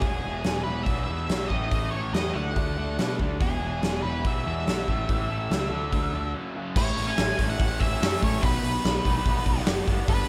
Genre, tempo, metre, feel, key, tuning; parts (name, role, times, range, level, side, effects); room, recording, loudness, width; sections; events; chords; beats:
classic rock; 143 BPM; 4/4; straight; A4 = 436 Hz
octave-fuzz lead guitar; melody; 0.0-10.3 s; G#4 to G#5; -34 LUFS; equal; distortion
distorted electric guitar; riff; 0.0-10.3 s; E2 to E4; -34 LUFS; equal; distortion, slapback echo
growling picked electric bass; bass; 0.0-10.2 s; E1 to B2; -33 LUFS; equal; overdrive
huge arena drum kit; drums; 0.0-10.2 s; crash cymbal, hi-hat, kick drum, snare drum; -29 LUFS; equal
light reverb, small room ambience; -26 LUFS; mono
0.0-6.8 A section; 6.8-10.3 B section
break 6.3-6.8
0.0 E; 1.5 A5; 2.3 D; 3.4 E; 4.9 A; 5.7 D5; 6.3 F#5; 6.8 A; 8.4 B
| 0.02 0.44 0.86 1.29 | 1.71 2.13 2.56 2.98 | 3.40 3.82 4.24 4.67 | 5.09 5.51 5.93 6.35 | 6.76 7.18 7.60 8.01 | 8.43 8.84 9.25 9.67 | 10.08